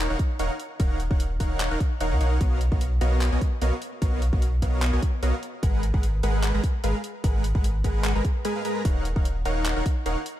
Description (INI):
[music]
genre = future bass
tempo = 149 BPM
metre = 4/4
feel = swing 54% on 16ths, half-time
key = Eb minor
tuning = A4 = 440 Hz
[part]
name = dense compressed supersaw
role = riff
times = 0.0-10.2 s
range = Ab3 to Bb5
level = -29 LUFS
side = equal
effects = sidechain pumping
[part]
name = saturated sub bass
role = bass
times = 0.0-10.2 s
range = Eb1 to Eb2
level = -24 LUFS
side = equal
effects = sidechain pumping
[part]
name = electronic kick drum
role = drums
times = 0.2-9.9 s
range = none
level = -24 LUFS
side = equal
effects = none
[part]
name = pop drum kit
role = drums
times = 0.2-10.3 s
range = handclaps, hi-hat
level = -34 LUFS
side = equal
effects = none
[sound]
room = little or no reverb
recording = dark, warm production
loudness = -22 LUFS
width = side -13 dB against mid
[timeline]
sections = 0.0-10.4 A section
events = break 8.4-8.9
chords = 0.0 Ebm7; 2.4 Bmaj9#11; 5.6 Abm7; 8.9 Ebm7